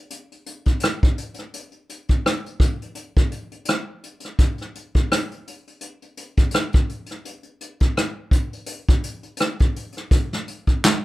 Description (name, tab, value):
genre	R&B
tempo	84 BPM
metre	4/4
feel	swing 55% on 16ths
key	none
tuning	none
part	vintage brush drum kit	drums	0.1-11.0 s	handclaps, hi-hat, kick drum, rim click, snare drum	-19 LUFS	equal	none
room	little or no reverb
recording	rough home demo mix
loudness	-20 LUFS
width	side -17 dB against mid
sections	0.0-11.0 A section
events	none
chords	none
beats	0.11 0.82 | 1.54 2.25 2.96 3.68 | 4.39 5.11 5.82 6.54 | 7.25 7.96 8.68 9.39 | 10.11 10.82